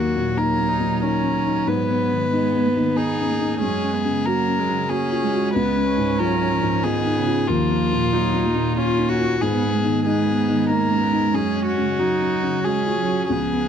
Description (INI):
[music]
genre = neoclassical piano and strings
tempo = 93 BPM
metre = 3/4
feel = rubato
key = unclear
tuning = A4 = 440 Hz
[part]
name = rich violin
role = melody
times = 0.0-13.7 s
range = F4 to Cb5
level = -24 LUFS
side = left 2 dB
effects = none
[part]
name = warm cello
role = second line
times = 0.0-13.7 s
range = Db3 to Cb4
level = -25 LUFS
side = right 7 dB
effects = none
[part]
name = felt-muted upright piano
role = accompaniment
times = 0.0-13.7 s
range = Db2 to Gb4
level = -22 LUFS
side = left 3 dB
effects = none
[part]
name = rich viola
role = accompaniment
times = 0.0-13.7 s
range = Ab3 to Eb4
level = -27 LUFS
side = right 3 dB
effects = none
[sound]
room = light reverb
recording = dark, warm production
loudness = -18 LUFS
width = side -8 dB against mid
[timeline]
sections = 0.0-13.7 A section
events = none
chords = 0.0 Ebm; 1.7 Abmadd9; 3.6 Gbsus2; 5.6 Db7; 7.5 Ebmadd9; 9.4 Abmadd9; 11.3 Gbsus2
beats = 0.37 1.03 | 1.68 2.33 2.97 | 3.62 4.26 4.91 | 5.56 6.20 6.84 | 7.49 8.14 8.78 | 9.42 10.06 10.71 | 11.35 12.00 12.66 | 13.32